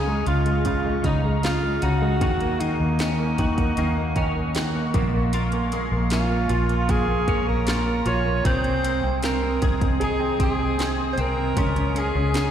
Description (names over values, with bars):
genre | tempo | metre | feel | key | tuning
pop ballad | 77 BPM | 4/4 | straight | Bb minor | A4 = 443 Hz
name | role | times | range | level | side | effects
breathy alto saxophone | melody | 0.0-12.5 s | Eb4 to Db5 | -27 LUFS | right 1 dB | slapback echo, digital delay
clear concert grand piano | accompaniment | 0.0-12.5 s | Db3 to Ab4 | -26 LUFS | right 3 dB | slapback echo
glassy FM pad | sustained chords | 0.0-12.5 s | Ab4 to Eb6 | -33 LUFS | left 1 dB | ensemble chorus, built-in reverb
twelve-string electric guitar | arpeggios | 0.0-12.5 s | Bb2 to Ab4 | -31 LUFS | left 2 dB | analog chorus, slapback echo, digital delay
vintage muted fingered electric bass | bass | 0.0-12.5 s | Bb1 to Eb2 | -25 LUFS | left 1 dB | none
house drum kit | drums | 0.3-12.5 s | hi-hat, kick drum, snare drum | -27 LUFS | equal | none
room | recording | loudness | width
light reverb | live gig heard through the venue's PA, recital hall reverb | -20 LUFS | side -9 dB against mid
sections
0.0-12.5 A section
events
none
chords
0.0 Dbadd9; 2.2 Ebm7; 4.9 Bbm7; 8.5 Ab/C; 11.6 Dbadd9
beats
0.66 1.44 | 2.22 3.00 3.78 4.55 | 5.33 6.11 6.89 7.67 | 8.45 9.23 10.01 10.79 | 11.57 12.35